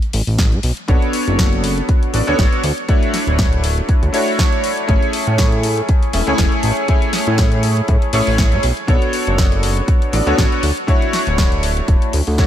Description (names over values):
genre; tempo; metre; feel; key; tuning
nu-disco, nu disco; 120 BPM; 4/4; swing 56% on 16ths; A major; A4 = 440 Hz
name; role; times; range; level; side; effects
house drum kit; drums; 0.0-12.5 s; hi-hat, snare drum; -24 LUFS; left 1 dB; none
fat analog bass; bass; 0.1-12.5 s; D1 to A2; -17 LUFS; equal; none
electronic kick drum; drums; 0.4-12.5 s; none; -15 LUFS; equal; none
clear electric grand piano; accompaniment; 0.9-12.5 s; A3 to E5; -19 LUFS; equal; lush chorus, ping-pong delay
room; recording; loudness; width
light reverb; none; -13 LUFS; side -11 dB against mid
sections
0.0-12.5 A section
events
none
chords
0.0 N.C.; 0.6 Bm9; 2.6 Dmaj9; 4.9 Amaj7; 8.6 Bm9; 10.6 Dmaj9